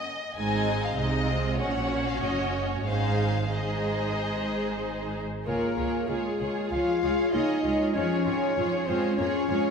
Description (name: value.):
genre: quick classical-period movement for symphony orchestra.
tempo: 95 BPM.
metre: 4/4.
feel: uneven beats, rubato.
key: Db major.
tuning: A4 = 441 Hz.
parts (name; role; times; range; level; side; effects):
rich studio violin section; melody; 0.0-9.7 s; Ab4 to Ab5; -35 LUFS; left 3 dB; none.
rich studio violin section; second line; 0.0-9.7 s; Eb4 to Eb5; -32 LUFS; left 2 dB; none.
rich studio viola section; accompaniment; 0.0-9.7 s; Ab3 to F4; -32 LUFS; right 3 dB; none.
clear studio double bass section; bass; 0.4-9.6 s; Gb1 to F2; -33 LUFS; right 3 dB; none.
warm studio cello section; bass; 0.4-9.7 s; Gb2 to Bb3; -34 LUFS; right 2 dB; none.
clear clarinet; second line; 5.5-9.7 s; Ab4 to F5; -35 LUFS; equal; none.
warm French horn section; sustained chords; 5.5-9.7 s; Ab3 to F4; -27 LUFS; left 3 dB; none.
room: wet concert hall reverb, RT60 2.6 s.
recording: none.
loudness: -25 LUFS.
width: side -6 dB against mid.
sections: 0.0-5.5 A section; 5.5-9.7 B section.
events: none.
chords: 0.4 Ab; 1.6 Gb/Bb; 2.9 Ab; 5.5 Db; 8.0 Db/F.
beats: | 0.36 0.98 1.59 2.22 | 2.86 3.52 4.17 4.82 | 5.46 6.08 6.71 7.33 | 7.95 8.57 9.19.